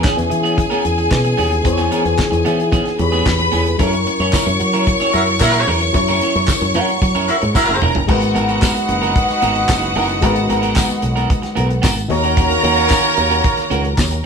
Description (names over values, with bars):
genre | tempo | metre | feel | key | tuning
disco | 112 BPM | 4/4 | straight | unclear | A4 = 444 Hz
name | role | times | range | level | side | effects
bright studio string section | second line | 0.0-14.2 s | F#4 to C#6 | -19 LUFS | equal | none
barky reed electric piano | accompaniment | 0.0-14.3 s | D#3 to C#5 | -24 LUFS | left 4 dB | overdrive
electric guitar at the edge of break-up | accompaniment | 0.0-14.2 s | B3 to C#5 | -22 LUFS | right 4 dB | none
dark French horn section | sustained chords | 0.0-8.1 s | E3 to A#4 | -23 LUFS | left 2 dB | none
damped 70s drum kit | drums | 0.0-14.2 s | crash cymbal, handclaps, hi-hat, kick drum, snare drum, toms | -19 LUFS | equal | none
fingered electric bass | bass | 0.2-14.2 s | E1 to F#3 | -20 LUFS | equal | none
tambourine | percussion | 4.3-14.1 s | none | -28 LUFS | left 6 dB | none
warm horn section | stabs | 5.1-14.2 s | F#3 to C#5 | -21 LUFS | right 2 dB | none
room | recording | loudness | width
wet studio reverb, RT60 0.5 s | band playing live in one room | -13 LUFS | side -6 dB against mid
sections
0.0-8.1 A section; 8.1-14.3 B section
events
drum fill 7.6-8.1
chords
0.0 E6; 3.8 F#7; 8.1 G#m9; 12.1 D#m7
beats
0.04 0.57 1.11 | 1.65 2.19 2.72 3.26 | 3.80 4.33 4.87 5.41 | 5.94 6.48 7.02 7.55 | 8.09 8.62 9.16 9.70 | 10.23 10.77 11.30 11.84 | 12.37 12.91 13.44 13.98